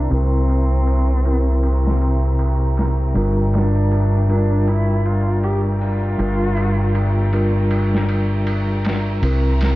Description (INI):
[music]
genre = trip hop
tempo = 79 BPM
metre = 4/4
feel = swing 58% on 16ths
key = G dorian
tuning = A4 = 444 Hz
[part]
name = rich cello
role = melody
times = 0.0-7.3 s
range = C4 to G4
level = -28 LUFS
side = right 1 dB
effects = vintage 12-bit sampler grit, tape echo
[part]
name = mellow tine electric piano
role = accompaniment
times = 0.0-9.8 s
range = C3 to Bb4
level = -22 LUFS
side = equal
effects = tremolo, tape echo
[part]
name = bright studio violin section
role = sustained chords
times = 0.0-9.8 s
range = G4 to Bb5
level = -32 LUFS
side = equal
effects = none
[part]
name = deep dub fingered electric bass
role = bass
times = 0.0-9.8 s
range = G1 to C2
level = -18 LUFS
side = equal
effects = tube saturation
[part]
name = bowed-like drone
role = texture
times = 0.0-9.8 s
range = E5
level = -36 LUFS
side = right 1 dB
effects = built-in reverb
[part]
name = boom bap sampler-style drum kit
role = drums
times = 0.1-9.8 s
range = hi-hat, ride cymbal, snare drum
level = -30 LUFS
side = right 1 dB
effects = overdrive, low-pass filter on cymbals, low-pass filter on snare, low-pass filter on hats, low-pass filter on room
[sound]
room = little or no reverb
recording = vinyl crackle, low-pass filter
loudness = -16 LUFS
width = side -18 dB against mid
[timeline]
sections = 0.0-9.8 A section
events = filter sweep 0.0-9.8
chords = 0.0 C7; 3.2 Gm7; 9.2 C7